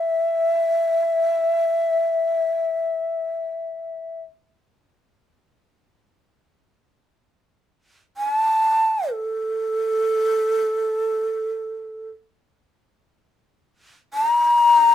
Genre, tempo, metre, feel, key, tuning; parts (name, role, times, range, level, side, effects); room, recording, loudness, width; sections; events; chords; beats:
japanese traditional, Japanese chamber music; free time; A4 = 440 Hz
breathy hollow long shakuhachi; solo; 0.0-4.2, 8.2-14.9 s; A4 to Bb5; -19 LUFS; left 1 dB
light reverb; minimal, uncompressed stereo recording; -19 LUFS; side -11 dB against mid
0.0-12.5 A section; 12.5-14.9 A section
free time